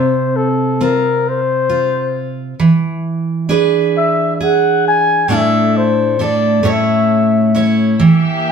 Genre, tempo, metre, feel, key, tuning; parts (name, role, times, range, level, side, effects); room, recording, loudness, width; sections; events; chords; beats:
acoustic folk-pop ballad; 44 BPM (dotted quarters); 6/8; straight; A4 = 440 Hz
breathy flugelhorn; melody; 0.0-8.5 s; A4 to G#5; -15 LUFS; left 4 dB; slapback echo
fingerpicked steel-string acoustic guitar; accompaniment; 0.0-8.5 s; A2 to C#5; -14 LUFS; right 2 dB
warm chamber string section; sustained chords; 8.0-8.5 s; Bb3 to E5; -20 LUFS; equal
wet studio reverb, RT60 0.8 s; heard from further back in the room; -12 LUFS; side -6 dB against mid
0.0-8.5 A section
0.0 Csus4; 2.6 E7; 5.3 Asus4; 6.6 A; 8.0 Edim
1.24 | 2.59 3.94 | 5.29 6.65 | 8.00